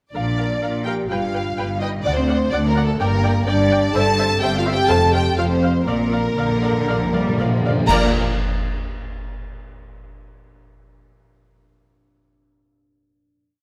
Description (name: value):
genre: cinematic, heroic adventure film score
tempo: 117-127 BPM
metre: 4/4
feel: straight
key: Bb major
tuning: A4 = 440 Hz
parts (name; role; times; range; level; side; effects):
- warm symphonic violin section; melody; 0.1-8.2 s; A4 to Bb5; -27 LUFS; equal; none
- warm symphonic violin section; second line; 0.1-8.2 s; A4 to Bb5; -29 LUFS; equal; none
- rich symphonic viola section; accompaniment; 0.1-8.2 s; Bb4 to G5; -29 LUFS; equal; none
- dark French horn section; sustained chords; 0.1-8.1 s; A3 to A4; -26 LUFS; equal; none
- concert harp; arpeggios; 0.1-9.9 s; F2 to F5; -32 LUFS; equal; none
- dark symphonic double bass section; bass; 0.1-8.2 s; F1 to D2; -28 LUFS; equal; none
- rich symphonic cello section; bass; 0.2-8.2 s; D2 to G3; -27 LUFS; equal; none
- timpani; percussion; 0.2-0.8, 4.9-8.1 s; F2 to Bb2; -29 LUFS; equal; none
- cymbal swell, clash cymbals and concert bass drum; percussion; 4.0-8.9 s; none; -29 LUFS; equal; none
room: wet scoring stage reverb, RT60 1.6 s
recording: none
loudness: -19 LUFS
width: mono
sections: 0.2-7.9 theme; 7.9-9.9 final chord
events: slowing down 3.0-7.9; timpani fill 5.9-7.9; band accent 7.9-8.4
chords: 0.2 Bb; 1.1 G7; 2.1 D; 3.0 Gm; 4.0 C/G; 4.9 F5; 5.9 Bb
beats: | 0.15 0.63 1.10 1.58 | 2.05 2.53 3.00 3.48 | 3.95 4.43 4.90 5.38 | 5.87 6.37 6.87 7.38 | 7.89 8.40 8.91 9.41